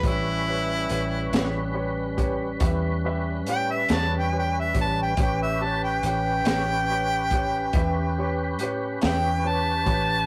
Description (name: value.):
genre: slow blues.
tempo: 47 BPM (dotted quarters).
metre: 12/8.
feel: straight.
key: unclear.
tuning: A4 = 440 Hz.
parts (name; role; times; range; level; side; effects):
clear harmonica; melody; 0.0-10.3 s; E4 to A5; -28 LUFS; equal; overdrive.
warm upright piano; accompaniment; 0.0-10.2 s; G4 to E5; -35 LUFS; equal; none.
vintage muted fingered electric bass; bass; 0.0-10.3 s; A1 to A2; -31 LUFS; equal; none.
crunchy breakbeat drum kit; drums; 0.0-10.1 s; hi-hat, kick drum, snare drum; -28 LUFS; equal; none.
tonewheel organ; sustained chords; 0.1-10.3 s; G3 to B4; -33 LUFS; equal; slow rotary speaker, overdrive, chorus vibrato.
room: moderate small room reverb, RT60 0.5 s.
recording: rough rehearsal-room recording.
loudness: -25 LUFS.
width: mono.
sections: 0.0-10.3 A section.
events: harmonica solo 0.0-10.3.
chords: 0.1 A9.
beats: | 0.05 1.33 2.62 3.90 | 5.18 6.46 7.74 9.02.